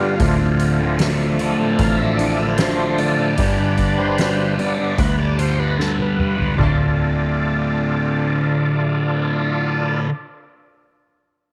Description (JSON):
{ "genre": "psychedelic rock", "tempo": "75 BPM", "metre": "4/4", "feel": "straight", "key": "D dorian", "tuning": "A4 = 440 Hz", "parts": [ { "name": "overdriven tonewheel organ", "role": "sustained chords", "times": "0.0-10.0 s", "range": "F3 to F5", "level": "-24 LUFS", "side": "equal", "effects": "slow rotary speaker, chorus vibrato" }, { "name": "fuzz guitar", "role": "riff", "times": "0.0-10.1 s", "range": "D2 to G3", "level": "-22 LUFS", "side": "equal", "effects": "distortion, phaser" }, { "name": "picked electric bass", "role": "bass", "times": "0.2-10.0 s", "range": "D1 to D2", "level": "-26 LUFS", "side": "equal", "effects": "none" }, { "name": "soft-mallet drum kit", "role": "drums", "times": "0.2-6.8 s", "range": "hi-hat, kick drum, snare drum, splash cymbal, toms", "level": "-26 LUFS", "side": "equal", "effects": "none" } ], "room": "moderate spring reverb, RT60 2.2 s", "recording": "none", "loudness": "-19 LUFS", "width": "mono", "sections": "0.0-6.6 A section; 6.6-9.8 B section", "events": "tonewheel organ solo 0.0-6.6; drum fill 5.8-6.6", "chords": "0.2 Dm; 3.4 G; 6.6 Dm" }